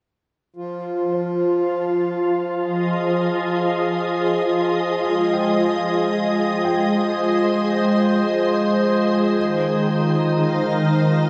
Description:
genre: ambient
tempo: 55 BPM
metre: 4/4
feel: straight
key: F minor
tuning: A4 = 440 Hz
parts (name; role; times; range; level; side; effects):
- soft additive organ-like pad; sustained chords; 0.9-11.3 s; Eb3 to F5; -21 LUFS; equal; ensemble chorus, built-in reverb
- pedal harmonium; drone; 0.6-11.3 s; F3; -27 LUFS; equal; none
- felt-muted upright piano; arpeggios; 1.1-11.3 s; C5 to Ab5; -37 LUFS; equal; none
room: wet cathedral reverb, RT60 6.5 s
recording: dark, warm production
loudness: -20 LUFS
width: mono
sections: 0.6-11.3 A section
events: none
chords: 0.6 Fm7; 5.0 Ab; 9.4 Ebadd9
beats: | 0.56 1.68 2.79 3.89 | 4.99 6.09 7.18 8.27 | 9.36 10.45

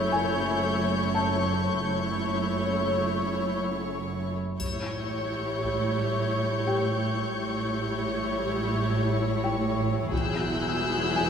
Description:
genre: cinematic, suspense film score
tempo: 87 BPM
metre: 4/4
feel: straight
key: unclear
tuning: A4 = 440 Hz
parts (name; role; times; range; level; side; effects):
- warm symphonic violin section; melody; 0.0-11.3 s; G#4 to C#5; -32 LUFS; left 1 dB; none
- dark chamber viola section; accompaniment; 0.0-11.3 s; F#3 to E4; -31 LUFS; equal; none
- dark symphonic double bass section; bass; 0.0-11.3 s; E1 to A1; -33 LUFS; right 3 dB; none
- warm studio cello section; bass; 0.0-11.3 s; E2 to A2; -32 LUFS; right 3 dB; none
- dark studio violin section; texture; 0.0-11.3 s; C#6 to G6; -34 LUFS; left 6 dB; none
- felt-muted upright piano; texture; 0.0-11.3 s; G4 to A5; -33 LUFS; left 3 dB; none
- solo taiko drums; drums; 4.6-6.0, 10.1-11.3 s; none; -36 LUFS; left 2 dB; none
- triangle; percussion; 4.6-5.9 s; none; -41 LUFS; left 4 dB; none
room: wet concert hall reverb, RT60 2.5 s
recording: none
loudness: -25 LUFS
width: side -7 dB against mid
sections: 0.0-11.3 A section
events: none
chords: 0.0 F#m7; 4.6 A7; 10.1 Eadd9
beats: 0.47 1.16 | 1.84 2.53 3.22 3.91 | 4.60 5.29 5.98 6.67 | 7.36 8.05 8.74 9.43 | 10.12 10.81

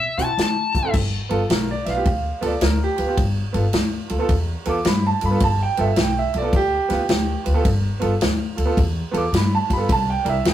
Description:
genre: electric blues shuffle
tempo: 107 BPM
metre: 4/4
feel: swing 66% on 8ths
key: G mixolydian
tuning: A4 = 440 Hz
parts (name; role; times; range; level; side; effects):
- cranked stack guitar; melody; 0.0-0.9 s; E5 to A5; -22 LUFS; left 5 dB; overdrive
- upright bass; bass; 0.0-10.5 s; F#1 to D3; -23 LUFS; left 1 dB; none
- clear concert grand piano; accompaniment; 0.2-10.5 s; B3 to D6; -22 LUFS; right 3 dB; none
- natural country drum kit; drums; 0.2-10.5 s; crash cymbal, hi-hat, kick drum, ride cymbal, snare drum; -23 LUFS; equal; none
room: moderate small room reverb, RT60 0.5 s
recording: rough rehearsal-room recording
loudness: -18 LUFS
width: side -12 dB against mid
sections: 0.9-10.5 A section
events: none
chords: 0.0 D7; 0.9 G7; 9.9 C7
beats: 0.38 | 0.94 1.50 2.06 2.62 | 3.18 3.74 4.30 4.86 | 5.42 5.97 6.53 7.09 | 7.65 8.21 8.77 9.33 | 9.89 10.45

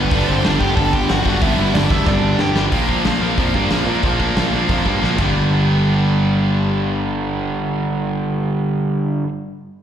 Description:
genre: punk rock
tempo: 183 BPM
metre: 4/4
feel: straight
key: unclear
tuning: A4 = 440 Hz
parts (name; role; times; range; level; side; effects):
- biting lead guitar; melody; 0.0-2.6 s; B3 to A5; -22 LUFS; equal; overdrive, slapback echo
- cranked stack guitar; riff; 0.0-9.3 s; G2 to Bb3; -21 LUFS; left 7 dB; overdrive
- cranked stack guitar; riff; 0.0-9.3 s; G2 to D4; -21 LUFS; right 10 dB; overdrive, slapback echo
- fuzz picked electric bass; bass; 0.0-9.2 s; E1 to Bb2; -20 LUFS; equal; overdrive
- big rock drum kit; drums; 0.1-5.3 s; crash cymbal, hi-hat, kick drum, snare drum; -21 LUFS; equal; none
room: light reverb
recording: live gig heard through the venue's PA, recital hall reverb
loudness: -15 LUFS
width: side -9 dB against mid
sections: 0.0-2.7 A section; 2.7-5.4 B section; 5.4-8.0 C section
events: drum fill 2.1-2.7, 5.0-5.4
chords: 0.0 G; 2.7 Bb; 5.2 G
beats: | 0.12 0.44 0.77 1.10 | 1.42 1.75 2.08 2.40 | 2.73 3.06 3.38 3.71 | 4.04 4.37 4.70 5.03 | 5.36 5.69 6.02 6.35 | 6.68 7.01 7.34 7.67

